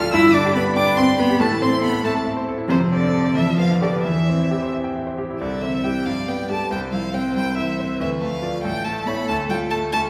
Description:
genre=quick classical-period movement for piano quartet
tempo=93 BPM (dotted quarters)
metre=6/8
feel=rubato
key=C major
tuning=A4 = 440 Hz
part: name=rich violin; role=melody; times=0.0-10.0 s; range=C5 to F6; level=-29 LUFS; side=equal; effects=none
part: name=rich violin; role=second line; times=0.0-10.1 s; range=A4 to F6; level=-33 LUFS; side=equal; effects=none
part: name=bright grand piano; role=accompaniment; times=0.0-10.1 s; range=A1 to B5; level=-24 LUFS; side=equal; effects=none
part: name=rich cello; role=second line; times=0.1-10.0 s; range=C3 to E4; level=-25 LUFS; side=equal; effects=none
room=wet recital hall reverb, RT60 1.7 s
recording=heard from further back in the room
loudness=-21 LUFS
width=mono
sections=0.0-5.4 A section; 5.4-10.1 A section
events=none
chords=0.1 G; 1.4 Am; 2.7 Dm7/F; 3.4 G7/F; 4.0 C/E; 5.4 C; 6.1 G; 6.7 C; 8.0 Dm; 8.6 A; 9.3 Dm

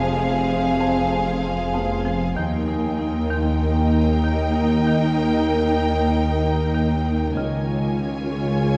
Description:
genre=cinematic, suspense film score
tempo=96 BPM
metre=4/4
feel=straight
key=unclear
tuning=A4 = 441 Hz
part: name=warm symphonic violin section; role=melody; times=0.0-8.8 s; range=F5 to G#5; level=-31 LUFS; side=equal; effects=none
part: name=warm symphonic violin section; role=second line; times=0.0-8.8 s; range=Ab4 to C#5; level=-33 LUFS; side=equal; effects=none
part: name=dark studio viola section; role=accompaniment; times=0.0-8.8 s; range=C4 to E#4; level=-32 LUFS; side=equal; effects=none
part: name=ethereal airy pad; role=sustained chords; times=0.0-8.8 s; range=G#4 to C6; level=-36 LUFS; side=equal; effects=none
part: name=warm French horn section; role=sustained chords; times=0.0-8.8 s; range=C3 to A#4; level=-31 LUFS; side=equal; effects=none
part: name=marimba with hard mallets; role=riff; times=0.0-8.8 s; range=F2 to D#4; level=-30 LUFS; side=equal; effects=none
part: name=clear symphonic double bass section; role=bass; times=0.0-8.8 s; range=F1 to D#2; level=-29 LUFS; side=equal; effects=none
part: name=rich studio cello section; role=bass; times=0.0-8.8 s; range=C#2 to F2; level=-28 LUFS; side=equal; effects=none
part: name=saturated sub bass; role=drone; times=0.0-8.8 s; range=F1 to D#2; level=-30 LUFS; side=equal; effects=none
part: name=warm grand piano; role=texture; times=0.0-8.8 s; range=B3 to D#5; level=-36 LUFS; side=equal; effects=none
room=wet scoring stage reverb, RT60 1.9 s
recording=none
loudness=-21 LUFS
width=mono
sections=0.0-8.8 A section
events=none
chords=0.0 Fm; 2.4 D#; 7.4 C#

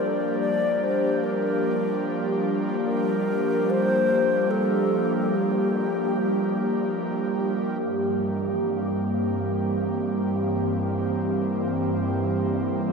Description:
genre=ambient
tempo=free time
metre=none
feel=none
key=unclear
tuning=A4 = 440 Hz
part: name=alto flute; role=melody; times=0.0-7.0 s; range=G4 to D5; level=-26 LUFS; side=left 3 dB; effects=diffuse ambient delay
part: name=airy breathy pad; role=sustained chords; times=0.0-12.9 s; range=G2 to G4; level=-23 LUFS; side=right 1 dB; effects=chorus
room=wet cathedral reverb, RT60 5.1 s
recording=in a vast, echoing space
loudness=-22 LUFS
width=side -5 dB against mid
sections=0.0-7.8 A section; 7.8-12.9 B section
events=none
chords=0.0 Gm7; 7.8 C7/G

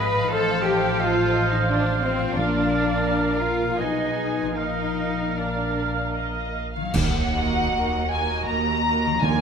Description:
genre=classical, slow romantic movement for symphony orchestra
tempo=74-90 BPM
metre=3/4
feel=rubato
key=Eb minor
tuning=A4 = 440 Hz
part: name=muted studio violin section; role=melody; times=0.0-9.4 s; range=Eb5 to Bb5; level=-29 LUFS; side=left 2 dB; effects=none
part: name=dark clarinet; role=second line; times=0.0-6.6 s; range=Bb4 to C5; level=-32 LUFS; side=left 2 dB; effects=none
part: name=muted studio violin section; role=second line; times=0.0-9.4 s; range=F4 to Eb5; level=-33 LUFS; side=equal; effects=none
part: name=silver concert flute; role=second line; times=0.0-6.1 s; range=C5 to Cb6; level=-32 LUFS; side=left 1 dB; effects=none
part: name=warm oboe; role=second line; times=0.0-6.6 s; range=Eb5 to Ab5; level=-30 LUFS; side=right 2 dB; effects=none
part: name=muted studio viola section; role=accompaniment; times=0.0-9.4 s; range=Bb3 to F5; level=-31 LUFS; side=right 4 dB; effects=none
part: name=mellow French horn section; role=sustained chords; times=0.0-6.1 s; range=C4 to Cb5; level=-30 LUFS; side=left 4 dB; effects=none
part: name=concert harp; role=arpeggios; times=0.0-9.4 s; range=Ab2 to C5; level=-32 LUFS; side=left 11 dB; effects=none
part: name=muted studio cello section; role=bass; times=0.0-9.4 s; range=Eb2 to Cb5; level=-28 LUFS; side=right 2 dB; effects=none
part: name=muted studio double bass section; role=bass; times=0.0-9.4 s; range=Ab1 to Eb2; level=-28 LUFS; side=right 3 dB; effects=none
part: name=timpani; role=percussion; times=2.4-3.4, 6.9-9.4 s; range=Bb2 to Eb3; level=-28 LUFS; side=right 2 dB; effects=none
part: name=clash cymbals and concert bass drum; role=percussion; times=6.9-8.4 s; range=none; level=-28 LUFS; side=equal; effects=none
room=light reverb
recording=none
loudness=-20 LUFS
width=side -6 dB against mid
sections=0.0-6.9 A section; 6.9-9.4 B section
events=band accent 6.9-7.7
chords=0.3 F7/A; 2.4 Bb; 3.8 Abm/Cb; 4.6 Bb; 6.9 Ebm

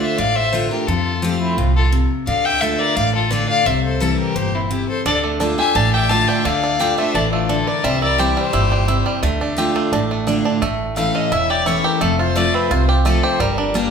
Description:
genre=bluegrass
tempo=172 BPM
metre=4/4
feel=straight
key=D minor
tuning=A4 = 441 Hz
part: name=dark fiddle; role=melody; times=0.0-13.9 s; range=E4 to A5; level=-20 LUFS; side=left 3 dB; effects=none
part: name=clear fiddle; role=second line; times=0.0-9.2 s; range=C4 to F5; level=-26 LUFS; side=left 2 dB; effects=none
part: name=picked steel-string acoustic guitar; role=accompaniment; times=0.0-13.9 s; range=E2 to G4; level=-21 LUFS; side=left 1 dB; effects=none
part: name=upright bass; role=bass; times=0.2-13.9 s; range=E1 to F2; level=-22 LUFS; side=right 1 dB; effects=none
part: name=bluegrass banjo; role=arpeggios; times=5.1-13.9 s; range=G3 to G4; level=-20 LUFS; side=right 3 dB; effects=none
room=wet large studio reverb, RT60 1.3 s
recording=band playing live in one room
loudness=-15 LUFS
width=side -6 dB against mid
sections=0.0-10.6 A section; 10.6-13.9 B section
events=fiddle solo 10.6-13.9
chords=0.0 Dm; 0.9 F; 2.3 Dm; 3.7 C; 5.1 Dm; 7.8 C; 9.2 Dm; 10.6 A; 12.0 F; 13.4 Gm

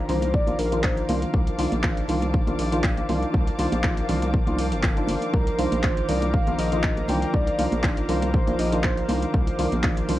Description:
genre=deep house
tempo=120 BPM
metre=4/4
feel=swing 54% on 16ths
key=C dorian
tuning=A4 = 440 Hz
part: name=warm analog pad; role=sustained chords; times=0.0-10.2 s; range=F3 to D6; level=-33 LUFS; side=equal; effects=chorus, sidechain pumping
part: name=percussive organ stab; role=stabs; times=0.0-10.2 s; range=D3 to F4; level=-28 LUFS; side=equal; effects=ensemble chorus, sidechain pumping, tape echo
part: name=muted studio string section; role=texture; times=0.0-10.2 s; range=Eb3 to D6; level=-34 LUFS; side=left 1 dB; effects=sidechain pumping
part: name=breathy flute-like synth lead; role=melody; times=0.1-1.2, 5.3-9.2 s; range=Bb4 to G5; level=-29 LUFS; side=equal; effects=lush chorus, tape echo
part: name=round analog bass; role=bass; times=0.1-10.2 s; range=G1 to C2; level=-27 LUFS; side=equal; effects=sidechain pumping
part: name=deep house drum kit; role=drums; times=0.1-10.2 s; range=handclaps, hi-hat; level=-32 LUFS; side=equal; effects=vintage 12-bit sampler grit, small room ambience
part: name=congas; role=percussion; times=0.1-10.2 s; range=none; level=-32 LUFS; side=right 2 dB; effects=none
part: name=electronic kick drum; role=drums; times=0.3-9.9 s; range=none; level=-23 LUFS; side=equal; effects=vintage 12-bit sampler grit, small room ambience
room=little or no reverb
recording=cassette tape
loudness=-21 LUFS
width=side -15 dB against mid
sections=0.0-10.2 A section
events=none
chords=0.0 Cm11

